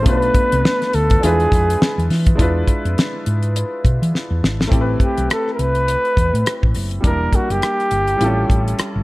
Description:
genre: lush 1970s-style soul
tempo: 103 BPM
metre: 4/4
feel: swing 58% on 16ths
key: unclear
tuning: A4 = 443 Hz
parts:
  - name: breathy flugelhorn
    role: melody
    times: 0.0-9.0 s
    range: F#4 to B4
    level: -19 LUFS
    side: equal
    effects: none
  - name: clear concert grand piano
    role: accompaniment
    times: 0.0-9.0 s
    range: F3 to B4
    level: -23 LUFS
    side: left 1 dB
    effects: none
  - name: hollow-body short-scale fingered electric bass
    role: bass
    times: 0.0-9.0 s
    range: E1 to E3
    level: -19 LUFS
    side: equal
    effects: none
  - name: damped 70s drum kit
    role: drums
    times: 0.1-8.9 s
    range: hi-hat, kick drum, rim click, snare drum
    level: -17 LUFS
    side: equal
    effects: none
room: light reverb, small room ambience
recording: dark, warm production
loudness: -15 LUFS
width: side -20 dB against mid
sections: 0.0-2.4 A section; 2.4-4.7 B section; 4.7-9.0 C section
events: drum fill 4.1-4.7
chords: 0.1 Bm7b5; 1.2 E7b9; 4.7 Am9; 7.0 Em7b5; 8.2 A7b13

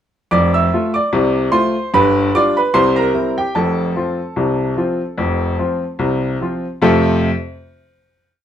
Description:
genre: ragtime piano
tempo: 74 BPM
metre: 2/4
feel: swing 55% on 16ths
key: F major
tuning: A4 = 439 Hz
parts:
  - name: bright grand piano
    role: solo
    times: 0.3-7.3 s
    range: F1 to E6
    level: -14 LUFS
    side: equal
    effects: none
room: moderate studio reverb, RT60 0.6 s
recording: none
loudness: -14 LUFS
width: side -10 dB against mid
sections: 0.3-6.8 A section; 6.8-8.4 final chord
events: none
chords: 0.3 F; 1.9 G7; 2.8 C7; 3.6 F

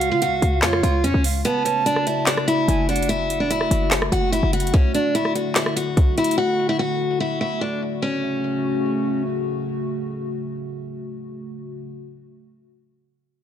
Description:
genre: hip hop, trap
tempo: 146 BPM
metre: 4/4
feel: half-time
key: F# minor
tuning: A4 = 437 Hz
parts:
  - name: picked steel-string acoustic guitar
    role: melody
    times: 0.0-9.2 s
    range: B3 to F#4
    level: -22 LUFS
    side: left 1 dB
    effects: low-pass filter, ping-pong delay
  - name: breathy jazz flute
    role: second line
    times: 0.0-3.1 s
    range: C#5 to A5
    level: -26 LUFS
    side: right 6 dB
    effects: ping-pong delay
  - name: dark analog pad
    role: sustained chords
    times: 0.0-11.9 s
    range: C#3 to E#5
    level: -27 LUFS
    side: left 1 dB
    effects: chorus
  - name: short 808-style bass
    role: bass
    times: 0.0-4.7 s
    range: F#1 to C#3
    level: -22 LUFS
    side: equal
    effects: none
  - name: trap drum kit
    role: drums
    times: 0.0-6.4 s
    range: handclaps, hi-hat, kick drum, rim click, snare drum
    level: -21 LUFS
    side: equal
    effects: none
room: light reverb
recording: none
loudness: -19 LUFS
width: side -9 dB against mid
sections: 0.0-8.0 A section; 8.0-11.3 B section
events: kick muted 1.4-1.9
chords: 0.0 C#; 1.4 F#m; 4.7 D; 8.0 F#m

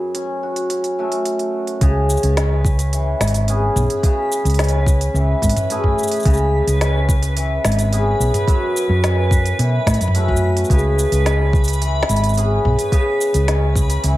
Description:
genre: folktronica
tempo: 108 BPM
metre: 4/4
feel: straight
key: C# minor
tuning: A4 = 436 Hz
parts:
  - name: cimbalom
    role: arpeggios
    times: 0.0-14.2 s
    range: F#2 to G#4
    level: -20 LUFS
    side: equal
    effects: tape echo
  - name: organic electronic drum kit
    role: drums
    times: 0.1-14.2 s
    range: hi-hat, shaker, snare drum, toms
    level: -24 LUFS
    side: equal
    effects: none
  - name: hollow-body short-scale fingered electric bass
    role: bass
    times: 1.8-14.2 s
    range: G#1 to B2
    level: -17 LUFS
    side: equal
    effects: none
  - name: electronic kick drum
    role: drums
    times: 1.8-13.9 s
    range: none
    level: -16 LUFS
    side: equal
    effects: none
  - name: backwards swelling texture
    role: texture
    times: 2.3-14.2 s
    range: B4 to B5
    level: -28 LUFS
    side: equal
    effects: built-in reverb
room: light reverb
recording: none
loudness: -15 LUFS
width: side -16 dB against mid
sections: 0.0-1.8 A section; 1.8-14.2 B section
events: none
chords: 0.0 F#m; 1.8 C#m7; 4.0 Amaj7/C#; 6.3 C#m7; 8.5 F#m7; 10.7 C#m7; 12.9 Amaj7/C# (rootless)

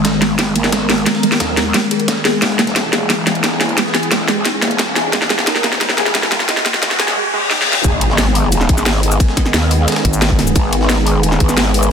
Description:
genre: dark technical drum and bass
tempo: 177 BPM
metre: 4/4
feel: straight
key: G# minor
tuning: A4 = 440 Hz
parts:
  - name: sweeping resonant pad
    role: sustained chords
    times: 0.0-11.9 s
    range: D#3 to A#4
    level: -20 LUFS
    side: equal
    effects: chorus, sidechain pumping
  - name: warbly dusty pluck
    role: arpeggios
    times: 0.0-7.8 s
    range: G#3 to G#4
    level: -21 LUFS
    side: right 3 dB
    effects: wide subtle chorus, sidechain pumping, dub echo
  - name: growl bass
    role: bass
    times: 0.0-11.9 s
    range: E1 to D#2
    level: -18 LUFS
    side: equal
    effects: chorus, tube saturation
  - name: breakbeat sampler-style drum kit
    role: drums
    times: 0.0-11.9 s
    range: ride cymbal, snare drum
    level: -25 LUFS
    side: right 1 dB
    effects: none
  - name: drum and bass drum kit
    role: drums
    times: 0.0-11.9 s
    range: cabasa, hi-hat, snare drum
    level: -16 LUFS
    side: equal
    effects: overdrive, studio reverb
  - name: electronic kick drum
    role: drums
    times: 0.0-11.5 s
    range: none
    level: -17 LUFS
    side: equal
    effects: overdrive, high-pass filter on kick, studio reverb
  - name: riser, reverse cymbal and impact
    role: sound effects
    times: 0.0-9.2 s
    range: none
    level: -23 LUFS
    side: left 2 dB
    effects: none
  - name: growling FM bass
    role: bass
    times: 10.0-10.5 s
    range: G#1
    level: -17 LUFS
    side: equal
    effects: none
room: moderate lush hall reverb, RT60 1.9 s, digital ambience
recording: dense, heavily limited modern master, high-pass filter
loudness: -12 LUFS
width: side -7 dB against mid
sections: 0.0-7.8 A section; 7.8-11.9 B section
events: build-up 0.0-7.8; drum fill 0.0-7.2, 7.5-7.8; riser 0.0-7.8; filter sweep on analog synth pad 0.0-7.8; filter sweep on synth arpeggio sound 0.0-7.8; filter sweep 0.0-7.8; reverse cymbal 7.2-7.8; drop 7.8-11.9; impact 7.8-9.2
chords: 0.0 G#m; 2.4 E; 7.8 G#m

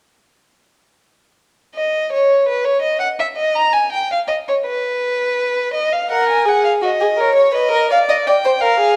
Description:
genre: classical, baroque-style fugue for string quartet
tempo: 55 BPM (dotted quarters)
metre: 6/8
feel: straight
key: unclear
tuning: A4 = 440 Hz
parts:
  - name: rich violin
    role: melody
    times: 1.8-9.0 s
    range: B4 to A#5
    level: -19 LUFS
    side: equal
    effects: none
  - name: dark violin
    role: second line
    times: 6.1-9.0 s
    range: F#4 to F5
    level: -17 LUFS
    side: equal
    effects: none
room: wet recital hall reverb, RT60 1.5 s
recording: dark, warm production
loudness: -17 LUFS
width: mono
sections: 1.4-9.0 A section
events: none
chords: 1.4 N.C.; 5.8 D#m (rootless); 6.8 D#5; 7.9 Dm

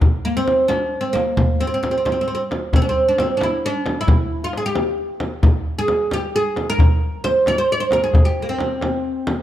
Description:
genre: Persian modal ensemble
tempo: 88 BPM (dotted quarters)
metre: 6/8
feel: straight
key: C dastgah homayun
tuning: A4 = 442 Hz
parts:
  - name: frame drum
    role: percussion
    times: 0.0-9.4 s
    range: none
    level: -22 LUFS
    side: right 1 dB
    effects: none
  - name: tombak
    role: percussion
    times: 0.0-9.4 s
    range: none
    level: -21 LUFS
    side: left 1 dB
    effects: none
  - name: oud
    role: melody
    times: 0.2-9.4 s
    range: Bb3 to Db5+45c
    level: -19 LUFS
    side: right 1 dB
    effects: none
room: light reverb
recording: dark, warm production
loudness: -16 LUFS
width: side -12 dB against mid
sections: 0.0-9.4 A section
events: none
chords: none

